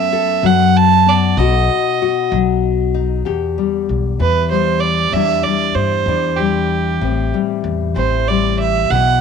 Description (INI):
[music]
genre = acoustic folk duo or small band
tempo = 64 BPM (dotted quarters)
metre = 6/8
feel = straight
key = E minor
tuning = A4 = 441 Hz
[part]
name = warm fiddle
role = melody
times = 0.0-9.2 s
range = G4 to A5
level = -16 LUFS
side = right 9 dB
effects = none
[part]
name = nylon-string guitar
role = accompaniment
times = 0.0-9.2 s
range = E2 to A4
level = -18 LUFS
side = left 12 dB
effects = none
[part]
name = upright bass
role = bass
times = 0.4-9.2 s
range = A1 to G2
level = -19 LUFS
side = left 1 dB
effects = none
[sound]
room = moderate spring reverb, RT60 1.5 s, small room ambience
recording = 1960s-style stereo with parts hard left and right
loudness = -13 LUFS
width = side -6 dB against mid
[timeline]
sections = 0.0-3.3 A section; 3.3-9.2 B section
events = fiddle solo 3.3-9.2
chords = 0.0 D69/F#; 1.4 B; 3.3 Em; 5.1 Cadd9/E; 7.0 Am7